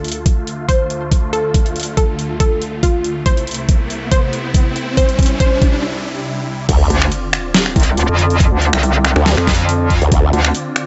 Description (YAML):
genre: heavy wobble dubstep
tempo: 140 BPM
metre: 4/4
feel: swing 54% on 16ths, half-time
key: D minor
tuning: A4 = 440 Hz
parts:
  - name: unison pluck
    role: melody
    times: 0.0-5.8 s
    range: F4 to C5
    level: -24 LUFS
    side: equal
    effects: tape echo
  - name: supersaw chords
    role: sustained chords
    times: 0.0-10.9 s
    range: C2 to D5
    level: -26 LUFS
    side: equal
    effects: phaser, sidechain pumping, low-pass filter
  - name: dubstep drum kit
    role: drums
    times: 0.0-10.9 s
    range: crash cymbal, finger snaps, hi-hat, snare drum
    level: -22 LUFS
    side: equal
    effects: overdrive, high-pass filter on hats, studio reverb, high-pass filter on cymbals, high-pass filter on snare
  - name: riser and sub drop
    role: sound effects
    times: 3.0-8.4 s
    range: none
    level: -27 LUFS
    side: equal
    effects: none
  - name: electronic kick drum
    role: drums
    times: 0.3-10.2 s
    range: none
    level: -16 LUFS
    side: equal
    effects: overdrive, studio reverb
  - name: formant-sweep wobble bass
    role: bass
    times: 6.7-10.3 s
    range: D2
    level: -15 LUFS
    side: equal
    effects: chorus, overdrive
  - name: metallic wobble bass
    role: bass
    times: 6.9-10.5 s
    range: C2 to F2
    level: -16 LUFS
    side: equal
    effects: chorus, overdrive
room: little or no reverb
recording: nothing above 7.9 kHz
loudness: -15 LUFS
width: mono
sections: 0.0-6.7 A section; 6.7-10.9 B section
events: build-up 0.0-6.7; filter sweep on supersaw synth 0.0-6.7; riser 3.1-5.8; drum fill 3.3-5.8; break 5.8-6.7; drop 6.7-10.9; impact 6.7-8.4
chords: 0.0 Dm; 3.3 Am/C; 5.0 C; 6.7 Dm7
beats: 0.26 0.69 1.12 | 1.54 1.97 2.40 2.83 | 3.26 3.69 4.12 4.54 | 4.97 5.40 5.83 6.26 | 6.69 7.12 7.54 7.97 | 8.40 8.83 9.26 9.69 | 10.12 10.54